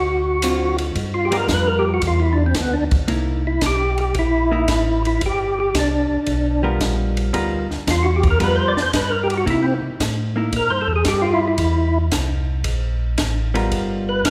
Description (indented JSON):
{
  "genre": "soul jazz organ trio",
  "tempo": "113 BPM",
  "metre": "4/4",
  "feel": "swing 68% on 8ths",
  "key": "unclear",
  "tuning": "A4 = 440 Hz",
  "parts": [
    { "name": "percussive tonewheel organ", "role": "melody", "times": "0.0-14.3 s", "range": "B3 to D5", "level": "-22 LUFS", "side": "equal", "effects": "slow rotary speaker, overdrive, chorus vibrato" },
    { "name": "mellow tonewheel organ", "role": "bass", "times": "0.0-14.3 s", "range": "G1 to C3", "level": "-24 LUFS", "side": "equal", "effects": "overdrive, slow rotary speaker" },
    { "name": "vintage hollow-body jazz guitar", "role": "accompaniment", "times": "0.4-14.2 s", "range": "D3 to A#4", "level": "-27 LUFS", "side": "equal", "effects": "none" },
    { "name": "compact cocktail drum kit", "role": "drums", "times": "0.4-14.3 s", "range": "hi-hat, kick drum, ride cymbal, snare drum", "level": "-27 LUFS", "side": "equal", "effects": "none" }
  ],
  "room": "moderate scoring stage reverb, RT60 1.7 s",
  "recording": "recorded in a church or concert hall",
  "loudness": "-19 LUFS",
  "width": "mono",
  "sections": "1.0-14.3 A section",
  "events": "tonewheel organ solo 1.0-14.3",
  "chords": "0.0 D7#9; 1.0 G7#9; 3.1 C7#9; 5.2 G7#9; 9.5 C7; 13.7 G7#9",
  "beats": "0.43 | 0.96 1.49 2.02 2.55 | 3.08 3.62 4.15 4.68 | 5.21 5.74 6.27 6.80 | 7.34 7.87 8.40 8.93 | 9.46 9.99 10.53 11.06 | 11.59 12.12 12.65 13.19 | 13.72 14.25"
}